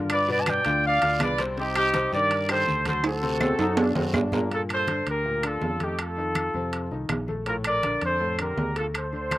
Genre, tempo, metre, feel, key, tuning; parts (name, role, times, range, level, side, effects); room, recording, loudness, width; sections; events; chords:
latin, salsa; 162 BPM; 4/4; straight; G minor; A4 = 439 Hz
clear baby grand piano; accompaniment; 0.0-9.4 s; A2 to C5; -32 LUFS; left 3 dB
fingered electric bass; bass; 0.0-9.4 s; Bb1 to G2; -32 LUFS; equal
mellow trumpet section; melody; 0.1-9.4 s; Eb4 to A5; -25 LUFS; equal; slapback echo
claves; percussion; 0.1-9.4 s; -33 LUFS; left 3 dB; slapback echo
congas; percussion; 0.1-9.4 s; -34 LUFS; left 1 dB
guiro; percussion; 0.1-4.5 s; -40 LUFS; right 4 dB
timbales; percussion; 0.1-9.4 s; -29 LUFS; right 3 dB
mellow trombone section; second line; 3.4-4.5 s; C4 to Eb4; -30 LUFS; left 1 dB; slapback echo
little or no reverb; recorded outdoors, with no room sound; -22 LUFS; side -16 dB against mid
0.0-4.5 A section; 4.5-9.4 B section
drum fill 3.0-4.5
0.1 G7; 1.6 Cm7; 3.0 D7; 4.5 Gm9; 6.0 F7; 7.5 Bbmaj9